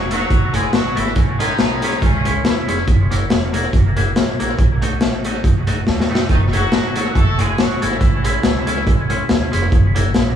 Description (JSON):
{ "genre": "ska", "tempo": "140 BPM", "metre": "4/4", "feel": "swing 55% on 8ths", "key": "F# dorian", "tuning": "A4 = 440 Hz", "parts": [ { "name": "clear horn section", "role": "melody", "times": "0.0-2.8, 6.3-9.5 s", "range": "C#3 to A4", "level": "-23 LUFS", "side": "equal", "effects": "none" }, { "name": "upright bass", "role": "bass", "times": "0.0-10.4 s", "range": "E1 to E2", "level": "-21 LUFS", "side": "equal", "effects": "none" }, { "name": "clean electric guitar", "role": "accompaniment", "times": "0.1-10.1 s", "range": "G#3 to F#4", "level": "-24 LUFS", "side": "equal", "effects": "dub echo" }, { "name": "crunchy breakbeat drum kit", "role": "drums", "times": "0.1-10.3 s", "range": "hi-hat, kick drum, snare drum", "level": "-16 LUFS", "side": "equal", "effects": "dub echo" } ], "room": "light reverb", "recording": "band playing live in one room, small room reverb", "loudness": "-14 LUFS", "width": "side -9 dB against mid", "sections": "0.0-10.4 A section", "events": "drum fill 5.9-6.3", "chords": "0.0 F#m7; 1.2 Amaj7; 2.9 F#7; 4.6 B7; 6.3 F#m7; 8.0 Amaj7; 9.7 F#7" }